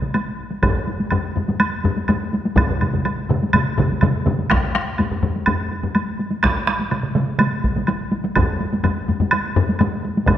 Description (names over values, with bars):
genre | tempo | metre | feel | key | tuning
japanese traditional, taiko drum ensemble | 124 BPM | 4/4 | straight | none | none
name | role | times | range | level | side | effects
solo taiko drums | percussion | 0.0-10.4 s | none | -22 LUFS | right 3 dB | none
taiko ensemble | percussion | 0.0-10.4 s | none | -22 LUFS | equal | none
woodblock | percussion | 0.1-10.4 s | none | -24 LUFS | right 2 dB | none
taiko ensemble | percussion | 0.6-10.4 s | none | -22 LUFS | left 3 dB | none
taiko ensemble | percussion | 0.6-10.4 s | none | -23 LUFS | equal | none
room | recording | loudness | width
wet concert hall reverb, RT60 1.9 s | none | -18 LUFS | side -11 dB against mid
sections
0.0-10.4 A section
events
none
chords
none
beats
0.15 | 0.63 1.12 1.60 2.09 | 2.57 3.06 3.54 4.02 | 4.50 4.99 5.47 5.95 | 6.43 6.92 7.40 7.88 | 8.36 8.84 9.32 9.80 | 10.28